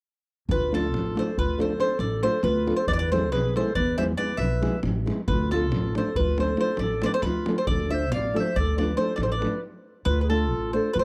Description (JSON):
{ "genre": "balkan folk, Balkan wedding band", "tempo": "276 BPM (eighths)", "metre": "11/8", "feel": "straight", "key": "D dorian sharp4", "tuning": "A4 = 440 Hz", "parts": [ { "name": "bowl-back mandolin", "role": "melody", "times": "0.5-11.0 s", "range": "A4 to F5", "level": "-30 LUFS", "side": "equal", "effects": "none" }, { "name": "warm clarinet", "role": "second line", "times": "0.5-11.0 s", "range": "F4 to D5", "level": "-34 LUFS", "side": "equal", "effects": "none" }, { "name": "upright bass", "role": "bass", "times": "0.5-11.0 s", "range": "A1 to E2", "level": "-30 LUFS", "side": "equal", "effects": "none" }, { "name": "davul", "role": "percussion", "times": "0.5-9.5 s", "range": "none", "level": "-33 LUFS", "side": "equal", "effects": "none" }, { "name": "nylon-string guitar", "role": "accompaniment", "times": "0.7-10.9 s", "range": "G#3 to A4", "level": "-31 LUFS", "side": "equal", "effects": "none" } ], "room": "small room ambience", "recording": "dry, close 1970s-style studio recording", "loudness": "-25 LUFS", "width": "mono", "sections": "0.5-10.1 A section", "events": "stop 9.6-10.1", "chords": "0.5 Dm; 2.9 E; 5.3 Dm" }